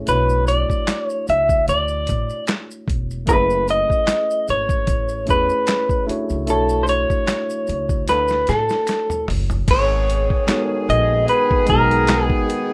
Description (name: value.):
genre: R&B, neo-soul.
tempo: 75 BPM.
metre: 4/4.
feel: swing 55% on 16ths.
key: G# minor.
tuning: A4 = 441 Hz.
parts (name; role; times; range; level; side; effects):
tine electric piano; accompaniment; 0.0-12.7 s; G#3 to C#5; -29 LUFS; equal; none.
upright bass; bass; 0.0-12.3 s; E1 to A2; -25 LUFS; equal; none.
electric guitar through a small old amp; melody; 0.1-12.4 s; A4 to E5; -21 LUFS; equal; slapback echo.
boom bap sampler-style drum kit; drums; 0.1-12.7 s; crash cymbal, handclaps, hi-hat, kick drum, snare drum, toms; -25 LUFS; equal; none.
maracas and finger snaps; percussion; 0.1-9.7 s; none; -41 LUFS; equal; none.
warm horn section; stabs; 9.7-12.7 s; D#3 to G#4; -27 LUFS; equal; none.
room: little or no reverb.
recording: rough home demo mix, lossy compression artefacts.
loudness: -19 LUFS.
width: mono.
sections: 0.0-9.7 A section; 9.7-12.7 B section.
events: drum fill 8.1-9.7.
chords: 0.1 Bm11; 3.3 F#m11; 6.5 Bm11; 9.7 G#m9.